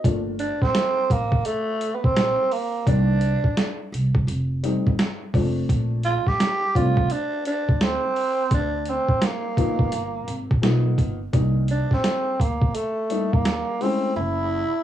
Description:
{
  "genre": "hip hop, jazz-hop",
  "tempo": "85 BPM",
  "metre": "4/4",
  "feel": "swing 63% on 16ths",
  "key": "G minor",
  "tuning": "A4 = 441 Hz",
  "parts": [
    { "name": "dark upright piano", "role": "accompaniment", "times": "0.0-14.1 s", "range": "Eb3 to E4", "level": "-27 LUFS", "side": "left 5 dB", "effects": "cassette tape, plate reverb" },
    { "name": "upright bass", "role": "bass", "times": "0.0-14.6 s", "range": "F1 to Eb2", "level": "-24 LUFS", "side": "right 1 dB", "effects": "none" },
    { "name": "boom bap sampler-style drum kit", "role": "drums", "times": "0.0-14.0 s", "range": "hi-hat, kick drum, snare drum", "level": "-23 LUFS", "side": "right 1 dB", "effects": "vintage 12-bit sampler grit, cassette tape" },
    { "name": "growling tenor saxophone", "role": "melody", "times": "0.4-14.8 s", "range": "A3 to G4", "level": "-24 LUFS", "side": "right 2 dB", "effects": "cassette tape, plate reverb" }
  ],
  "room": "light reverb",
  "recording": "home recording on cassette, small room ambience",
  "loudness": "-20 LUFS",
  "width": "side -11 dB against mid",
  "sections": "0.0-14.8 A section",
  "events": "none",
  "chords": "0.0 Gm9; 2.9 Cm9; 4.3 F9; 5.7 Bbmaj9; 8.5 Cm11/D; 9.9 G7alt; 11.3 Cm9; 14.2 F#7(no3)",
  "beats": "| 0.04 0.75 1.46 2.16 | 2.87 3.58 4.28 4.99 | 5.69 6.40 7.10 7.81 | 8.52 9.22 9.93 10.63 | 11.34 12.04 12.75 13.46 | 14.16"
}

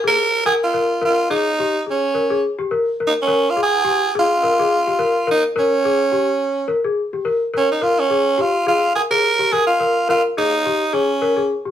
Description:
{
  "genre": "afrobeat",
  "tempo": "106 BPM",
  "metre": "4/4",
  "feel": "swing 55% on 16ths",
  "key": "Bb dorian",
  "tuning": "A4 = 438 Hz",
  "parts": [
    { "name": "worn celesta", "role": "arpeggios", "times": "0.0-11.7 s", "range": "G4 to Bb4", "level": "-20 LUFS", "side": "left 3 dB", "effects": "none" },
    { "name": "raspy tenor saxophone", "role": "melody", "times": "0.1-11.5 s", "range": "Db4 to Bb4", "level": "-17 LUFS", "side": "right 2 dB", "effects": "none" }
  ],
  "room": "moderate studio reverb, RT60 0.6 s",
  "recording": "band playing live in one room",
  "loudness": "-15 LUFS",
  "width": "side -10 dB against mid",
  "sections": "0.0-11.7 A section",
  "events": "none",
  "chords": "0.0 Bbm7",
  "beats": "0.47 | 1.04 1.61 2.17 2.74 | 3.30 3.87 4.44 5.00 | 5.57 6.13 6.70 7.26 | 7.83 8.40 8.96 9.53 | 10.09 10.66 11.22"
}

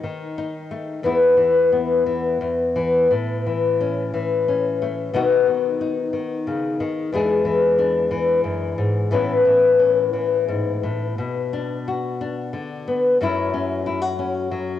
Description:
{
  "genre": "folk, solo fingerstyle acoustic guitar",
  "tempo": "90 BPM",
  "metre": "3/4",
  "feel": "rubato",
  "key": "unclear",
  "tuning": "A4 = 443 Hz",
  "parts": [
    { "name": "nylon-string guitar", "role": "solo", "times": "0.0-14.8 s", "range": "E2 to G#4", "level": "-18 LUFS", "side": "left 3 dB", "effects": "cassette tape, tape echo" }
  ],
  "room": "light reverb",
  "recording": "home recording on cassette",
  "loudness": "-18 LUFS",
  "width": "side -11 dB against mid",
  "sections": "0.0-11.2 A section; 11.2-14.8 B section",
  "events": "none",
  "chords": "0.0 B7 (rootless); 1.0 Esus4; 2.4 E5; 3.1 A; 5.1 B; 7.1 E7; 9.1 Aadd9; 11.2 Bm; 13.2 F#m7",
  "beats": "0.36 | 1.03 1.71 2.41 | 3.11 3.80 4.47 | 5.13 5.79 6.46 | 7.12 7.78 8.44 | 9.11 9.78 10.48 | 11.18 11.87 12.54 | 13.21 13.87 14.53"
}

